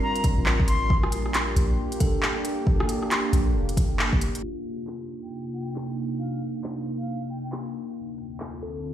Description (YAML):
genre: future garage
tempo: 136 BPM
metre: 4/4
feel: swing 62% on 16ths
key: C dorian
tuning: A4 = 441 Hz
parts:
  - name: breathy bright silver concert flute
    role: melody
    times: 0.0-1.0, 5.2-7.5 s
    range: F5 to C6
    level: -33 LUFS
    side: left 2 dB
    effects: digital delay
  - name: bell-like tine electric piano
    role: accompaniment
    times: 0.0-8.9 s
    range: C4 to A4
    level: -38 LUFS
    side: left 1 dB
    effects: phaser, sidechain pumping, dub echo
  - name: warbly tape-like pad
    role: sustained chords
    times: 0.0-8.9 s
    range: D2 to Bb4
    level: -30 LUFS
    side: right 1 dB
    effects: chorus, built-in reverb, sidechain pumping
  - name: electronic kick drum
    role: drums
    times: 0.2-4.2 s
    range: none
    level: -23 LUFS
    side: equal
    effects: none
  - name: organic electronic drum kit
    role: drums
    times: 0.2-8.7 s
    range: handclaps, hi-hat, rim click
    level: -28 LUFS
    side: equal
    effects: none
  - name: soft 808-style bass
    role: bass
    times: 0.4-4.4 s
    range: F1 to Bb1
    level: -25 LUFS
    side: equal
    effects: sidechain pumping
room: light reverb, digital ambience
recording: played on a big sound system in a bare room, stone room reverb, vinyl crackle, low-pass filter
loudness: -23 LUFS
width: side -11 dB against mid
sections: 0.0-4.4 A section; 4.4-8.9 B section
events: filter sweep on tine electric piano 0.0-4.4; band accent 4.0; filter sweep on ambient pad 4.4-8.9; filter sweep 4.4-8.9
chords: 0.0 Gm7; 0.9 Bb6; 4.4 Cm9; 8.0 Dm7